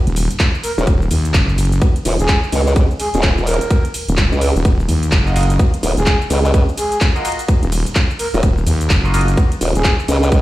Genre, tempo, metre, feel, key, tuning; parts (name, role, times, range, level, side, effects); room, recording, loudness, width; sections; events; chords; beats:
bass house; 127 BPM; 4/4; swing 61% on 16ths; Eb minor; A4 = 440 Hz
wobble bass; bass; 0.1-9.8 s; Eb1 to Eb2; -16 LUFS; equal; chorus, tube saturation, sidechain pumping
house drum kit; drums; 0.1-10.4 s; handclaps, hi-hat, ride cymbal, shaker; -23 LUFS; equal; studio reverb
electronic kick drum; drums; 0.4-10.4 s; -14 LUFS; equal; studio reverb
breathy flute-like synth lead; melody; 0.6-9.9 s; Ab4 to Bb4; -23 LUFS; equal; chorus, ping-pong delay
formant-sweep wobble bass; bass; 0.8-10.4 s; Eb1 to Db2; -14 LUFS; equal; chorus, tube saturation, sidechain pumping
band-passed chord stab; stabs; 5.3-9.3 s; Bb3 to Eb5; -23 LUFS; right 1 dB; phaser, sidechain pumping, ping-pong delay
little or no reverb; played on a big sound system in a bare room, large studio reverb; -13 LUFS; side -16 dB against mid
0.0-10.4 A section
0.0 Ebmadd9
0.40 | 0.87 1.34 1.82 2.29 | 2.76 3.23 3.71 4.18 | 4.65 5.12 5.59 6.07 | 6.54 7.01 7.49 7.96 | 8.43 8.90 9.38 9.85 | 10.32